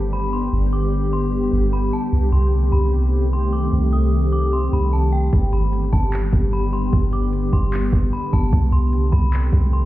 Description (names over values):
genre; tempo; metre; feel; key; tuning
hip hop, atmospheric cloud-rap; 150 BPM; 4/4; half-time; G major; A4 = 440 Hz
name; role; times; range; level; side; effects
glassy FM pad; sustained chords; 0.0-9.9 s; D3 to G4; -23 LUFS; left 1 dB; ensemble chorus, built-in reverb, sidechain pumping
soft 808-style bass; bass; 0.0-9.9 s; G1 to C2; -19 LUFS; equal; none
metallic FM bell; melody; 0.1-9.9 s; G5 to Eb6; -30 LUFS; left 1 dB; chorus, low-pass filter, ping-pong delay
smooth R&B drum kit; drums; 5.3-9.6 s; handclaps, hi-hat, kick drum; -19 LUFS; equal; overdrive
room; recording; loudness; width
digital ambience; heard muffled through a wall, stone room reverb, EQ; -17 LUFS; side -15 dB against mid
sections
0.0-9.9 A section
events
none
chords
0.0 G; 2.1 Cm6; 5.3 G; 8.5 Cm6